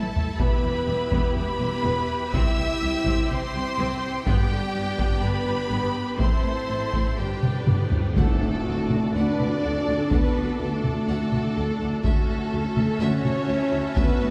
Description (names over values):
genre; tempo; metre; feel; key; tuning
cinematic, epic orchestral film score; 124 BPM; 4/4; straight; D major from 8.2 s; A4 = 438 Hz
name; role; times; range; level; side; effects
warm symphonic violin section; melody; 0.0-14.3 s; E5 to E6; -36 LUFS; equal; none
dark symphonic violin section; second line; 0.0-14.3 s; G4 to E5; -34 LUFS; equal; none
rich studio viola section; accompaniment; 0.0-14.3 s; D3 to B4; -37 LUFS; equal; none
mellow French horn section; sustained chords; 0.0-14.3 s; G3 to E4; -31 LUFS; equal; none
rich symphonic string section; sustained chords; 0.0-14.3 s; A3 to G5; -37 LUFS; equal; none
solo taiko drums; drums; 0.2-14.3 s; none; -27 LUFS; equal; none
rich symphonic cello section; bass; 0.4-14.3 s; C2 to A2; -34 LUFS; equal; none
rich symphonic double bass section; bass; 0.4-14.3 s; E1 to D2; -33 LUFS; equal; none
cymbal swell and tam-tam; percussion; 4.3-10.1 s; none; -38 LUFS; equal; none
timpani; percussion; 7.2-8.9 s; G2 to D3; -34 LUFS; equal; none
impact; sound effects; 8.2-10.1 s; none; -37 LUFS; equal; none
room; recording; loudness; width
wet scoring stage reverb, RT60 1.4 s; heard from further back in the room; -24 LUFS; mono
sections
0.0-8.2 A section; 8.2-14.3 B section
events
drum fill 0.0-0.4, 7.4-8.2; timpani fill 7.2-8.2; band accent 8.2-8.7; impact 8.2-10.1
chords
0.4 Em; 2.3 C; 4.3 G; 6.2 Am; 7.2 G; 8.2 D; 12.1 F#m7/D